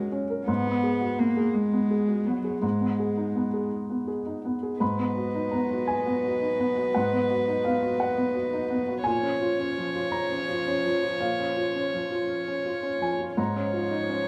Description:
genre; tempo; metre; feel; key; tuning
neoclassical piano and strings; 56 BPM (dotted quarters); 6/8; rubato; G# dorian; A4 = 440 Hz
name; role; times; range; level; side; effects
warm cello; second line; 0.0-14.3 s; E#3 to B3; -33 LUFS; equal; none
felt-muted upright piano; accompaniment; 0.0-14.3 s; F#2 to B5; -29 LUFS; equal; none
rich violin; melody; 4.8-14.3 s; B4 to C#5; -31 LUFS; equal; none
warm chamber string section; sustained chords; 4.8-14.3 s; B3 to D#5; -43 LUFS; equal; none
room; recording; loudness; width
light reverb; band playing live in one room; -27 LUFS; mono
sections
0.0-4.8 A section; 4.8-14.3 A section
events
none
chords
0.5 G#m7; 2.6 G#m; 4.8 G#m7; 9.1 A#m; 13.4 C#add9/G#

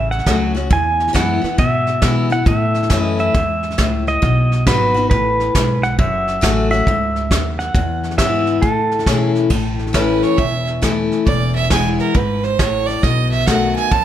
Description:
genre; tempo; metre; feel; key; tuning
honky-tonk and classic country; 136 BPM; 4/4; swing 65% on 8ths; A lydian, A major from 9.5 s; A4 = 440 Hz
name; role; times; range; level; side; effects
pedal steel guitar; melody; 0.0-9.3 s; A4 to G#5; -19 LUFS; right 1 dB; none
picked steel-string acoustic guitar; accompaniment; 0.0-14.0 s; E2 to F#4; -20 LUFS; left 4 dB; none
upright bass; bass; 0.0-14.0 s; E1 to B2; -21 LUFS; equal; none
soft brush drum kit; drums; 0.1-14.0 s; crash cymbal, hi-hat, kick drum, snare drum; -20 LUFS; equal; none
clear fiddle; second line; 9.9-14.0 s; Bb4 to A5; -20 LUFS; right 6 dB; none
room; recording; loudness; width
light reverb; none; -14 LUFS; side -11 dB against mid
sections
0.0-9.5 A section; 9.5-14.0 B section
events
fiddle solo 9.5-14.0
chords
0.0 F#m; 0.7 E; 2.5 A; 4.2 B; 6.0 F#m; 7.7 E; 8.6 A; 11.3 E; 13.0 B7

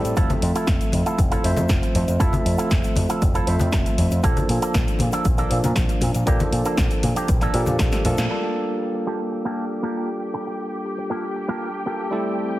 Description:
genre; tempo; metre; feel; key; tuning
nu-disco, nu disco; 118 BPM; 4/4; straight; G dorian; A4 = 440 Hz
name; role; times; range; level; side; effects
barky tine electric piano; accompaniment; 0.0-12.6 s; F3 to E5; -25 LUFS; equal; sidechain pumping, digital delay
electric guitar with an envelope filter; riff; 0.0-12.5 s; Bb3 to A4; -29 LUFS; right 2 dB; wide subtle chorus, low-pass filter, digital delay
picked electric bass with an envelope filter; bass; 0.0-8.3 s; F1 to Bb2; -23 LUFS; equal; none
house drum kit; drums; 0.0-8.3 s; hi-hat, snare drum; -29 LUFS; equal; low-pass filter on hats, studio ambience, low-pass filter on snare
tube shaker and congas; percussion; 0.0-8.3 s; none; -29 LUFS; left 2 dB; none
electronic kick drum; drums; 0.2-7.9 s; none; -22 LUFS; equal; studio ambience
rich symphonic string section; sustained chords; 8.3-12.6 s; G4 to G5; -32 LUFS; equal; sidechain pumping, low-pass filter
room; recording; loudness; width
light reverb, digital ambience; heavily compressed radio sound; -19 LUFS; side -16 dB against mid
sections
0.0-8.3 A section; 8.3-12.6 B section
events
drum fill 7.9-8.3; band accent 8.2; filter sweep on string section 8.3-12.6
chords
0.2 Fmaj7; 4.2 Bbmaj7; 8.3 Gm9

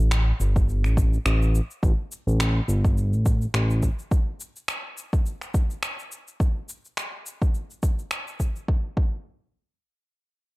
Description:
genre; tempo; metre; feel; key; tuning
organic downtempo; 105 BPM; 4/4; swing 56% on 16ths; unclear; A4 = 440 Hz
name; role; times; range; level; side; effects
smooth synth bass; bass; 0.0-3.9 s; G1 to A1; -21 LUFS; equal; sidechain pumping
electronic finger snaps and shaker; drums; 0.1-8.7 s; none; -31 LUFS; equal; overdrive
electronic kick drum; drums; 0.6-9.2 s; none; -22 LUFS; equal; overdrive
room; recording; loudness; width
little or no reverb; dark, warm production; -22 LUFS; side -21 dB against mid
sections
0.0-8.7 A section; 8.7-10.6 B section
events
none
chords
none

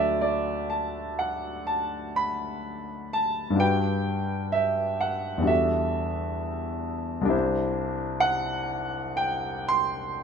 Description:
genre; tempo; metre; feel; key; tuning
classical, impressionist solo piano; 56-67 BPM; 4/4; rubato; D mixolydian; A4 = 440 Hz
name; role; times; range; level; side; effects
clear concert grand piano; solo; 0.0-10.2 s; C2 to C6; -25 LUFS; equal; none
room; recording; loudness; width
moderate recital hall reverb, RT60 1.8 s; close, detailed microphones; -25 LUFS; side -6 dB against mid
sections
0.0-10.2 A section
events
none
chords
0.0 D6; 3.6 Gmaj7; 5.5 Em11; 7.3 Cadd9

